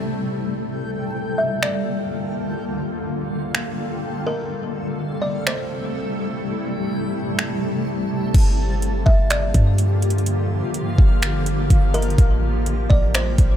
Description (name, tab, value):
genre	hip hop, atmospheric cloud-rap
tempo	125 BPM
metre	4/4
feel	half-time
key	G dorian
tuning	A4 = 440 Hz
part	granular cloud pad	sustained chords	0.0-13.6 s	C3 to A4	-24 LUFS	left 1 dB	built-in reverb, sidechain pumping, low-pass filter
part	backwards swelling texture	texture	0.0-13.6 s	Bb3 to A5	-33 LUFS	equal	built-in reverb
part	buzzing kalimba	melody	1.4-13.6 s	Bb4 to E5	-27 LUFS	equal	low-pass filter, ping-pong delay
part	smooth R&B drum kit	drums	1.6-13.5 s	crash cymbal, finger snaps, hi-hat, kick drum	-18 LUFS	equal	none
part	clean 808-style bass	bass	8.3-13.6 s	G1 to D3	-20 LUFS	equal	none
room	little or no reverb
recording	none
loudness	-19 LUFS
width	side -10 dB against mid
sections	0.0-8.3 A section; 8.3-13.6 B section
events	filter sweep 0.0-8.3; kick muted 7.4-8.3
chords	0.0 Am7; 0.7 Gm9; 4.5 Am7; 8.3 Gm9; 12.2 Am7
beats	0.18 | 0.66 1.14 1.62 2.10 | 2.58 3.06 3.54 4.02 | 4.50 4.98 5.46 5.94 | 6.42 6.90 7.38 7.86 | 8.34 8.82 9.30 9.78 | 10.26 10.74 11.22 11.70 | 12.18 12.66 13.14